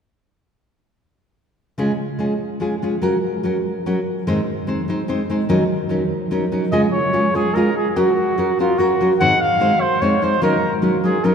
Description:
mexican folk, mariachi; 146 BPM; 3/4; straight; Db major; A4 = 442 Hz
nylon-string guitar; accompaniment; 1.8-11.3 s; Ab2 to C5; -18 LUFS; equal
mellow trumpet; melody; 6.7-11.3 s; F4 to Gb5; -18 LUFS; equal
wet cathedral reverb, RT60 4.3 s; recorded in a church or concert hall; -16 LUFS; side -7 dB against mid
1.8-6.7 A section; 6.7-11.3 B section
1.8 Db; 3.0 Gb; 4.3 Ab; 5.5 Ebm7; 6.7 Db; 8.0 Gb; 9.2 Ab; 10.4 Ebm7
| 1.78 2.20 2.61 | 3.03 3.44 3.85 | 4.26 4.67 5.08 | 5.49 5.90 6.32 | 6.73 7.14 7.56 | 7.97 8.38 8.79 | 9.19 9.60 10.01 | 10.42 10.83 11.24

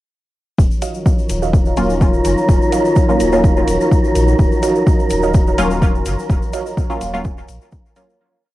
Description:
dub techno; 126 BPM; 4/4; straight; Eb minor; A4 = 442 Hz
dark analog pad; sustained chords; 0.6-8.2 s; Eb4 to Db5; -19 LUFS; equal; chorus, sidechain pumping, cassette tape
warm sub bass; bass; 0.6-7.6 s; Eb1 to Bb1; -21 LUFS; equal; sidechain pumping
electronic kick drum; drums; 0.6-7.8 s; -15 LUFS; equal; overdrive, cassette tape
tube shaker; percussion; 0.6-8.2 s; -35 LUFS; left 11 dB
wind-like tuned noise texture; texture; 1.3-8.2 s; Bb4; -23 LUFS; right 2 dB; built-in reverb, sidechain pumping, cassette tape
warbly dusty pluck; riff; 0.8-6.7 s; Gb4 to F5; -27 LUFS; right 7 dB; chorus, sidechain pumping, cassette tape, dub echo
electronic hi-hat; drums; 0.8-8.1 s; -32 LUFS; left 1 dB; overdrive, cassette tape
filtered dub chord stab; stabs; 1.8-8.2 s; Gb3 to F4; -21 LUFS; equal; chorus, phaser, cassette tape, dub echo
light reverb, digital ambience; home recording on cassette; -13 LUFS; side -16 dB against mid
0.6-8.2 groove
fade-out 5.7-8.2
0.6 Ebm9
| 0.58 1.06 1.53 2.01 | 2.49 2.96 3.44 3.92 | 4.39 4.87 5.34 5.82 | 6.30 6.77 7.25 7.73

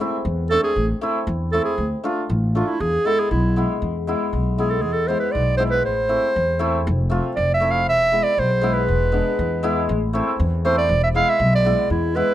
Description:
klezmer; 118 BPM; 2/4; straight; E phrygian dominant; A4 = 441 Hz
hammered dulcimer; accompaniment; 0.0-12.3 s; G#3 to F4; -24 LUFS; left 3 dB
upright bass; bass; 0.2-12.2 s; E1 to E2; -22 LUFS; equal
warm clarinet; melody; 0.5-12.3 s; E4 to F5; -20 LUFS; right 2 dB; slapback echo
light reverb; dry, close 1970s-style studio recording; -18 LUFS; side -12 dB against mid
0.0-3.8 A section; 3.8-11.9 B section
clarinet solo 3.8-11.9
0.0 Am; 1.8 Dm; 2.8 E; 5.9 Am; 6.9 F; 7.9 E; 9.9 Am; 10.9 E
0.26 | 0.77 1.28 | 1.79 2.30 | 2.81 3.31 | 3.82 4.33 | 4.84 5.35 | 5.85 6.36 | 6.87 7.37 | 7.88 8.38 | 8.89 9.39 | 9.89 10.40 | 10.90 11.41 | 11.91

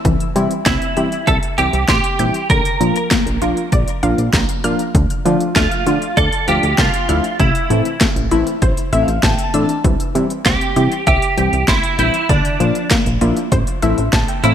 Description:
synth-pop; 98 BPM; 4/4; straight; A4 = 440 Hz
wide unison pluck; arpeggios; 0.0-14.5 s; C3 to G6; -23 LUFS; left 2 dB; ping-pong delay
chorused synth bass; bass; 0.0-14.5 s; A1 to D3; -19 LUFS; equal
house drum kit; drums; 0.0-14.5 s; hi-hat, kick drum, snare drum; -18 LUFS; equal; overdrive
warm analog keys; accompaniment; 0.4-14.5 s; E3 to A5; -21 LUFS; left 2 dB; chorus
direct-recorded clean electric guitar; melody; 0.7-14.5 s; D4 to Bb4; -19 LUFS; right 3 dB; ensemble chorus, ping-pong delay
moderate plate reverb, RT60 2.1 s; bright 1980s-style digital production; -13 LUFS; side -9 dB against mid
0.0-14.5 A section
synth keys fill 8.6-9.8, 13.8-14.5
0.0 C; 2.5 Bb; 4.9 Dm; 7.4 Am; 9.8 C; 12.3 Bb; 13.5 Am
| 0.05 0.66 1.27 1.89 | 2.50 3.11 3.72 4.33 | 4.95 5.56 6.17 6.78 | 7.40 8.01 8.62 9.23 | 9.85 10.46 11.07 11.68 | 12.29 12.91 13.52 14.13

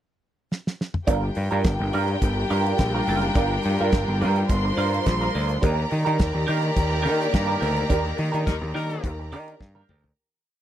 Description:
disco; 106 BPM; 4/4; straight; G minor; A4 = 440 Hz
damped 70s drum kit; drums; 0.5-10.2 s; hi-hat, kick drum, snare drum, toms; -23 LUFS; equal
warm studio violin section; second line; 1.1-10.1 s; G4 to C6; -29 LUFS; left 2 dB
clean electric guitar; accompaniment; 1.1-10.1 s; D4 to Bb4; -28 LUFS; right 5 dB; wah
clear studio string section; sustained chords; 1.1-10.1 s; Eb3 to D5; -29 LUFS; equal
overdriven picked electric bass; bass; 1.1-10.1 s; F#1 to Eb3; -25 LUFS; equal
clear horn section; stabs; 8.5-9.1 s; G3 to Bb4; -33 LUFS; left 5 dB
little or no reverb; dry, close 1970s-style studio recording; -21 LUFS; side -11 dB against mid
0.0-1.1 pickup bar; 1.1-10.2 groove
drum fill 0.5-1.1, 9.6-10.2; fade-out 7.9-10.2; band accent 7.9-10.2
0.0 N.C.; 1.1 Gm7; 5.6 Ebmaj7
0.51 | 1.08 1.65 2.22 2.78 | 3.35 3.92 4.49 5.06 | 5.63 6.19 6.76 7.33 | 7.90 8.47 9.04 9.60

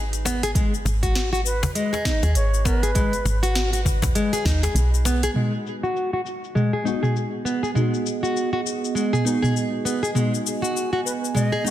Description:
organic downtempo; 100 BPM; 4/4; swing 59% on 16ths; G# minor pentatonic; A4 = 440 Hz
woody FM bass; bass; 0.0-5.3 s; G#1 to D#2; -22 LUFS; equal; tube saturation, sidechain pumping
afro-pop drum kit; drums; 0.1-11.7 s; cabasa, hi-hat, snare drum, toms; -26 LUFS; equal; low-pass filter on perc, small room ambience, low-pass filter on hats, low-pass filter on snare, low-pass filter on toms
nylon-string guitar; arpeggios; 0.3-11.7 s; G#3 to G#4; -25 LUFS; left 1 dB; low-pass filter, tape echo
cajon; percussion; 0.3-5.2 s; -29 LUFS; left 2 dB
electronic kick drum; drums; 0.6-4.6 s; -23 LUFS; equal; small room ambience
bansuri; melody; 1.4-3.6, 11.1-11.7 s; B4 to D#5; -31 LUFS; right 1 dB; tape echo
deep mellow chord stab; accompaniment; 5.3-11.7 s; G#3 to F#4; -29 LUFS; left 3 dB; chorus, sidechain pumping, tape echo
warm analog pad; sustained chords; 5.3-11.7 s; B3 to G#5; -28 LUFS; right 7 dB; chorus, sidechain pumping
moderate recital hall reverb, RT60 1.4 s, digital ambience; dense, heavily limited modern master; -20 LUFS; side -12 dB against mid
0.0-5.4 A section; 5.4-11.7 B section
filter sweep on drum 5.4-11.7; filter sweep on nylon-string guitar 5.4-11.7; filter sweep on synth stab 5.4-11.7; filter sweep on analog synth pad 5.4-11.7
0.0 G#m7
| 0.55 1.15 1.75 2.35 | 2.95 3.55 4.15 4.75 | 5.35 5.95 6.55 7.15 | 7.75 8.35 8.95 9.55 | 10.15 10.75 11.35

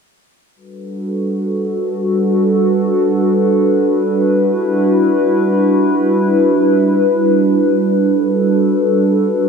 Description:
hip hop; free time; G major; A4 = 437 Hz
hollow soft pad; sustained chords; 0.6-9.5 s; G3 to B4; -12 LUFS; equal; chorus
moderate huge ambient reverb, RT60 4.7 s; -12 LUFS; side -6 dB against mid
0.6-9.5 A section
0.6 Gmaj9; 4.3 Em9/G; 8.0 Gmaj9
free time

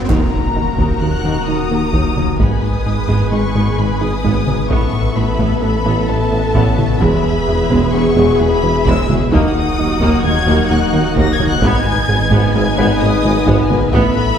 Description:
cinematic, hybrid orchestral and electronic film score; 130 BPM; 5/4; straight; G# minor; A4 = 439 Hz
warm symphonic violin section; second line; 0.0-14.4 s; F#4 to A#5; -25 LUFS; left 4 dB
analog string pad; sustained chords; 0.0-14.4 s; C#3 to D#5; -24 LUFS; equal; ensemble chorus
sub bass with octave; bass; 0.0-14.4 s; D#1 to A1; -24 LUFS; equal
riser and impact; sound effects; 0.0-2.4 s; -24 LUFS; equal
felt-muted upright piano; texture; 0.0-14.1 s; D#4 to D#6; -32 LUFS; left 1 dB
warm symphonic violin section; melody; 0.1-14.4 s; A5 to A#6; -23 LUFS; left 4 dB
warm symphonic viola section; accompaniment; 0.1-14.4 s; F#3 to B4; -22 LUFS; equal
warm French horn section; sustained chords; 0.1-14.4 s; A#3 to A4; -24 LUFS; left 3 dB
woody wave-folded pluck; arpeggios; 0.1-14.1 s; D#3 to B4; -25 LUFS; right 2 dB
smooth synth bass; riff; 0.1-14.3 s; D#2 to A3; -21 LUFS; left 1 dB
dark studio cello section; bass; 0.1-14.0 s; D#2 to A2; -23 LUFS; right 2 dB
warm symphonic double bass section; bass; 0.1-14.0 s; E1 to D#2; -23 LUFS; right 2 dB
warm tuba; bass; 0.1-14.0 s; E1 to D#2; -22 LUFS; right 2 dB
taiko ensemble; drums; 0.1-14.4 s; -20 LUFS; equal
wet scoring stage reverb, RT60 1.5 s; heard from further back in the room; -12 LUFS; side -8 dB against mid
0.1-14.4 A section
impact 0.1-2.4
0.1 D#m; 2.4 G#m; 4.7 Asus2; 7.0 E; 9.3 D#m; 11.6 G#m
| 0.09 0.55 1.01 1.47 1.93 | 2.40 2.86 3.32 3.78 4.24 | 4.70 5.17 5.63 6.09 6.55 | 7.01 7.47 7.93 8.39 8.86 | 9.32 9.78 10.24 10.70 11.16 | 11.63 12.09 12.55 13.01 13.47 | 13.93

